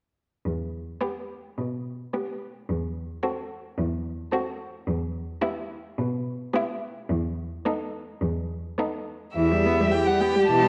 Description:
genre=quick classical-period movement for string quartet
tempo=107 BPM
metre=4/4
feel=rubato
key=E minor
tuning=A4 = 441 Hz
part: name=warm cello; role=bass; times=0.4-10.7 s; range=E2 to B2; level=-31 LUFS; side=equal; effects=none
part: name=warm violin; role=melody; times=1.0-10.7 s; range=G4 to A5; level=-31 LUFS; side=equal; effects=none
part: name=rich violin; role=second line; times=1.0-10.7 s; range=D#4 to G4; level=-30 LUFS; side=equal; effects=none
part: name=warm viola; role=accompaniment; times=1.0-10.7 s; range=E3 to C4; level=-30 LUFS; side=equal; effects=none
room=moderate concert hall reverb, RT60 1.7 s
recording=worn, warbling old tape, cassette tape, warbly pitch drift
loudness=-28 LUFS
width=mono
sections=0.4-9.4 A section; 9.4-10.7 B section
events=none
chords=0.4 Em; 2.7 F#m7b5/E; 4.9 Em

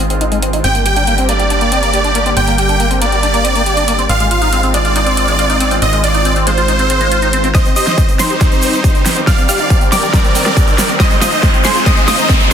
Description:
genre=uplifting trance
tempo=139 BPM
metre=4/4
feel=straight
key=C minor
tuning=A4 = 440 Hz
part: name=lush unison pad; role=sustained chords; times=0.0-12.5 s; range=D3 to G4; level=-20 LUFS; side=right 1 dB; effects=chorus, sidechain pumping
part: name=liquid acid bass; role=arpeggios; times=0.0-12.5 s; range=Ab3 to G4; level=-20 LUFS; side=left 2 dB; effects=lush chorus, sidechain pumping, digital delay
part: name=solid FM bass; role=bass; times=0.0-7.5 s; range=G1 to Ab1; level=-17 LUFS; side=equal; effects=sidechain pumping
part: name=big-room dance drum kit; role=drums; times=0.1-12.5 s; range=hi-hat, snare drum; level=-20 LUFS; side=right 1 dB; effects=overdrive, small room ambience
part: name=supersaw chords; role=melody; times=0.6-12.5 s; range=Eb4 to G5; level=-15 LUFS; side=right 1 dB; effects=sidechain pumping, digital delay
part: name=wide unison pluck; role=second line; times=7.5-12.5 s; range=C6 to F6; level=-20 LUFS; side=equal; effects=sidechain pumping, digital delay
part: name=electronic kick drum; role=drums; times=7.5-12.4 s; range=none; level=-12 LUFS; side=equal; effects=overdrive, small room ambience
part: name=tube shaker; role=percussion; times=7.5-12.5 s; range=none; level=-24 LUFS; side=right 5 dB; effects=none
part: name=riser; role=sound effects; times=9.0-12.5 s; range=none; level=-20 LUFS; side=equal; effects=none
room=light reverb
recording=dense, heavily limited modern master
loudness=-10 LUFS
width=side -8 dB against mid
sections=0.0-7.5 A section; 7.5-12.5 B section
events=filter sweep on acid bass 0.0-7.5; build-up 7.5-12.5; drum fill 7.5-12.5; riser 9.0-12.5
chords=0.0 Ab6; 0.6 Gm; 4.1 Fm7/Ab; 7.5 Cm; 11.0 Ab6

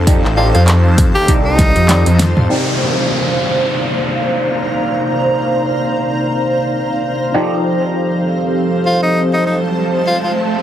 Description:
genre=glitch hop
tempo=99 BPM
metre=4/4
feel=swing 57% on 16ths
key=C dorian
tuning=A4 = 440 Hz
part: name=dark analog pad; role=sustained chords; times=0.0-10.6 s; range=C3 to D5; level=-20 LUFS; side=equal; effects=chorus, sidechain pumping
part: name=phased detuned saw bass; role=bass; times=0.0-2.5 s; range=A1 to F2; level=-12 LUFS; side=equal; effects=phaser, overdrive
part: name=granular cloud pad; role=texture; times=0.0-10.6 s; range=C5 to Bb5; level=-19 LUFS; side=right 1 dB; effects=built-in reverb, sidechain pumping
part: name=overdriven clav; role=stabs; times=0.1-10.6 s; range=C3 to D5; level=-20 LUFS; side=equal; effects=phaser, sidechain pumping, low-pass filter, dub echo
part: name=electronic kick drum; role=drums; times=0.1-1.7 s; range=none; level=-13 LUFS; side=equal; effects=none
part: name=pop drum kit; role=drums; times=0.1-2.5 s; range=handclaps, hi-hat, rim click, snare drum, toms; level=-17 LUFS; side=equal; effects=none
part: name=bright tenor saxophone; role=melody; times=0.4-2.3, 8.9-10.3 s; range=Eb4 to G4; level=-19 LUFS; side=equal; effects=dub echo
part: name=downlifter and riser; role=sound effects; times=2.5-10.6 s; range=none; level=-22 LUFS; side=equal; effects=none
room=moderate studio reverb, RT60 0.6 s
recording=heavily compressed radio sound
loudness=-12 LUFS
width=side -11 dB against mid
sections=0.0-2.5 A section; 2.5-10.6 B section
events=drum fill 1.6-2.5; band accent 2.2-2.5; filter sweep on clav 2.5-10.6; riser 9.3-10.6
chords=0.0 F13; 2.5 Cm9; 7.3 F13

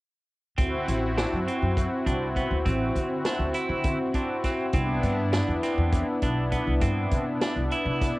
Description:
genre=progressive instrumental, band music in an uneven meter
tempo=202 BPM (eighths)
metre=7/8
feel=straight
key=unclear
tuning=A4 = 440 Hz
part: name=brassy analog pad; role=accompaniment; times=0.6-8.2 s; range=B3 to F#4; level=-27 LUFS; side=left 1 dB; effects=chorus
part: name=clean electric guitar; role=arpeggios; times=0.6-8.1 s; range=B3 to E4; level=-32 LUFS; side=right 3 dB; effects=none
part: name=upright bass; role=bass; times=0.6-8.1 s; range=A1 to D3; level=-28 LUFS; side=equal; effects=none
part: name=vintage drum kit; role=drums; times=0.6-8.2 s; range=hi-hat, kick drum, snare drum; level=-29 LUFS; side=equal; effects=cassette tape
room=light reverb, small room ambience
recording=home recording on cassette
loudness=-24 LUFS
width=side -20 dB against mid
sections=0.6-8.2 A section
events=none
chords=0.6 D7; 4.7 Cmaj7

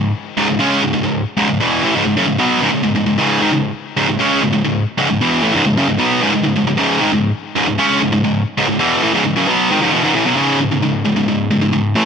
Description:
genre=metal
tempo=134 BPM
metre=4/4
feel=straight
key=C# minor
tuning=A4 = 440 Hz
part: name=high-gain distorted guitar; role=solo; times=0.0-12.1 s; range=C#2 to C#4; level=-13 LUFS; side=equal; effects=distortion
room=light reverb, digital ambience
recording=none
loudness=-13 LUFS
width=side -6 dB against mid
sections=0.0-10.4 A section; 10.4-12.1 B section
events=none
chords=0.0 C#m; 10.4 C#5

